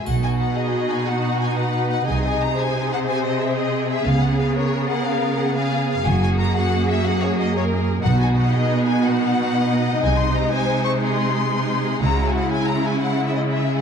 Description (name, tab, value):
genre	cinematic, heroic adventure film score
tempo	120 BPM (dotted quarters)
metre	12/8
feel	straight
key	B major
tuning	A4 = 437 Hz
part	rich studio violin section	melody	0.0-13.8 s	C#5 to C#6	-26 LUFS	left 5 dB	none
part	warm symphonic violin section	second line	0.0-13.8 s	E4 to D#5	-28 LUFS	left 4 dB	none
part	clear symphonic viola section	accompaniment	0.1-13.8 s	G#3 to G#4	-24 LUFS	right 1 dB	none
part	rich studio cello section	bass	0.1-13.8 s	F#2 to C#3	-23 LUFS	right 2 dB	none
part	warm symphonic double bass section	bass	0.1-12.3 s	F#1 to C#2	-23 LUFS	right 2 dB	none
part	triangle	percussion	0.1-0.7 s	none	-46 LUFS	left 4 dB	none
part	timpani	percussion	8.1-8.5 s	B2	-26 LUFS	equal	none
room	moderate scoring stage reverb, RT60 1.7 s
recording	dark, warm production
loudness	-18 LUFS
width	side -7 dB against mid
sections	0.1-13.8 A section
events	none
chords	0.1 B; 2.1 G#/B#; 4.1 C#7; 6.1 F#add9; 8.0 B; 10.0 G#/B#; 12.0 C#m